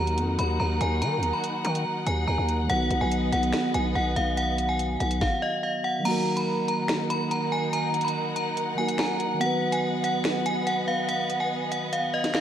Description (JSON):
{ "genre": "hip hop, drill", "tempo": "143 BPM", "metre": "4/4", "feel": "half-time", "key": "Eb minor", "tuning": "A4 = 440 Hz", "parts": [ { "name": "metallic FM bell", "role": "melody", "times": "0.0-12.4 s", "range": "D#5 to Cb6", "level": "-27 LUFS", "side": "equal", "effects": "chorus, low-pass filter, diffuse ambient delay" }, { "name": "muted felt-like synth keys", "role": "accompaniment", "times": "0.0-12.4 s", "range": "Eb3 to B4", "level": "-30 LUFS", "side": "right 2 dB", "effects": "chorus, low-pass filter" }, { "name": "dark symphonic string section", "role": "sustained chords", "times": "0.0-12.4 s", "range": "Eb3 to Gb5", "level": "-32 LUFS", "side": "left 1 dB", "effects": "none" }, { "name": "growling 808-style bass", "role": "bass", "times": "0.0-5.2 s", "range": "B1 to Eb3", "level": "-27 LUFS", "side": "equal", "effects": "none" }, { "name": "drill drum kit", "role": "drums", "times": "0.1-12.4 s", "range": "crash cymbal, finger snaps, hi-hat, kick drum, snare drum", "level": "-31 LUFS", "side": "equal", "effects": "none" } ], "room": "wet lush hall reverb, RT60 1.5 s", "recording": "dreamy mix soaked in reverb, vinyl crackle", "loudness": "-23 LUFS", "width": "side -10 dB against mid", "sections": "0.0-6.1 A section; 6.1-12.4 B section", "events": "kick muted 6.1-12.4", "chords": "0.0 Ebm; 2.7 B; 6.1 Ebm; 9.4 B" }